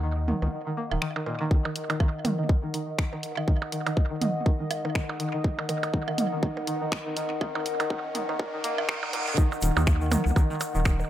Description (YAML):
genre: minimal techno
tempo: 122 BPM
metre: 4/4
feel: swing 58% on 16ths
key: Eb minor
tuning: A4 = 439 Hz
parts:
  - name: string-like resonator pluck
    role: riff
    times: 0.0-11.0 s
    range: Bb2 to Bb3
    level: -32 LUFS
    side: equal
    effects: chorus, sidechain pumping, analog delay
  - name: round analog bass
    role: bass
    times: 0.0-1.0, 9.6-11.0 s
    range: Eb1 to Eb2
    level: -26 LUFS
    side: equal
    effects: sidechain pumping
  - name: pulsing gated texture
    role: texture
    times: 0.0-9.4 s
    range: Eb5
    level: -40 LUFS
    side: left 1 dB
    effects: chorus, built-in reverb, sidechain pumping
  - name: warbly tape-like pad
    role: texture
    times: 0.0-11.1 s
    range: Eb4 to Gb5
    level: -34 LUFS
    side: left 1 dB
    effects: chorus, built-in reverb, sidechain pumping
  - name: electronic toms and percussion blips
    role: percussion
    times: 0.3-11.1 s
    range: none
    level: -32 LUFS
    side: right 3 dB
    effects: tape echo
  - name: garage drum kit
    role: drums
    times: 1.0-11.0 s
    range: finger snaps, hi-hat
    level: -33 LUFS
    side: left 1 dB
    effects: analog delay
  - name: electronic kick drum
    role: drums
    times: 1.5-11.0 s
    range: none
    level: -23 LUFS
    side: equal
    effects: none
  - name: riser and reverse cymbal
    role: sound effects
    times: 4.4-9.4 s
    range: none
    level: -39 LUFS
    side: right 2 dB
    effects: none
  - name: tube shaker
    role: percussion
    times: 9.4-11.1 s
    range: none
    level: -40 LUFS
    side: equal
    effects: none
room: light reverb, digital ambience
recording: echo-heavy mix, high-pass filter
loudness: -25 LUFS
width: side -12 dB against mid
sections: 0.0-1.5 A section; 1.5-9.4 B section; 9.4-11.1 C section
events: build-up 1.5-9.4; filter sweep on synth pluck 1.5-9.4; filter sweep 1.5-9.4; riser 4.4-9.4; reverse cymbal 8.4-9.4; drop 9.4-11.1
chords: 0.0 Ebm